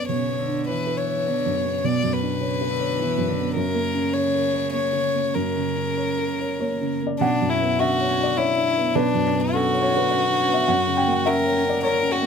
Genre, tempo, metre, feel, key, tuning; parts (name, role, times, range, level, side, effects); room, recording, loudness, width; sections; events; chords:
neoclassical piano and strings; 103 BPM; 3/4; rubato; B minor; A4 = 441 Hz
warm violin; melody; 0.0-12.3 s; D4 to D5; -23 LUFS; left 3 dB
dark upright piano; accompaniment; 0.0-12.3 s; B1 to G5; -23 LUFS; right 1 dB
warm cello; second line; 0.1-12.2 s; B2 to C#4; -31 LUFS; right 7 dB
little or no reverb; close, detailed microphones; -20 LUFS; side -6 dB against mid
0.1-7.2 A section; 7.2-12.3 B section
0.1 Bmadd9; 3.6 F#; 7.2 Bmadd9; 10.7 F#